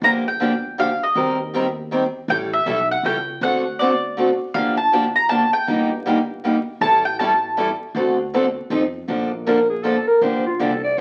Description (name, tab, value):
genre	acoustic string swing (jazz manouche)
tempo	159 BPM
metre	3/4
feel	swing 62% on 8ths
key	G minor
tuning	A4 = 439 Hz
part	mandolin	melody	0.0-8.7 s	D5 to Bb5	-22 LUFS	equal	none
part	picked steel-string acoustic guitar	accompaniment	0.0-11.0 s	D3 to Bb4	-23 LUFS	equal	none
part	upright bass	bass	0.0-11.0 s	G1 to F2	-35 LUFS	equal	none
part	breathy clarinet	second line	9.5-11.0 s	F4 to D5	-20 LUFS	equal	none
room	wet club reverb, RT60 0.8 s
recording	very old 78 rpm record, vinyl crackle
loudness	-20 LUFS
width	mono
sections	0.0-9.1 A section; 9.1-11.0 B section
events	clarinet solo 9.1-11.0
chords	0.0 Gm7; 1.1 Eb6; 2.3 A7; 3.4 D7; 4.5 Gm9; 5.7 Ebmaj7/G; 6.8 A7; 7.9 D7; 8.7 F7; 9.1 Bbmaj7; 10.2 Gm7